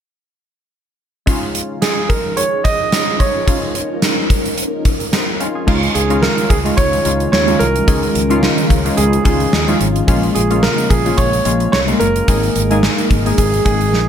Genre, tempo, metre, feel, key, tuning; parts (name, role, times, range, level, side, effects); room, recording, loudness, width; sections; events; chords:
1980s-style pop; 109 BPM; 4/4; swing 55% on 16ths; Db major; A4 = 438 Hz
glassy digital keys; accompaniment; 1.3-14.1 s; Ab3 to Ab4; -20 LUFS; left 1 dB; chorus
string machine, cellos; sustained chords; 1.3-14.1 s; Db3 to Bb4; -22 LUFS; equal; phaser, ensemble chorus
gated 80s drum kit; drums; 1.3-14.1 s; crash cymbal, hi-hat, kick drum, snare drum; -16 LUFS; equal
warm concert grand piano; melody; 1.8-14.1 s; Ab4 to Eb5; -19 LUFS; right 3 dB; ping-pong delay
fretless electric bass; bass; 5.7-14.1 s; Gb1 to Eb2; -19 LUFS; left 1 dB; wide subtle chorus
light reverb, small room ambience; -13 LUFS; side -8 dB against mid
1.3-5.7 A section; 5.7-14.1 B section
drum fill 13.9
1.3 Dbadd9; 10.1 Bbm7; 12.3 Absus2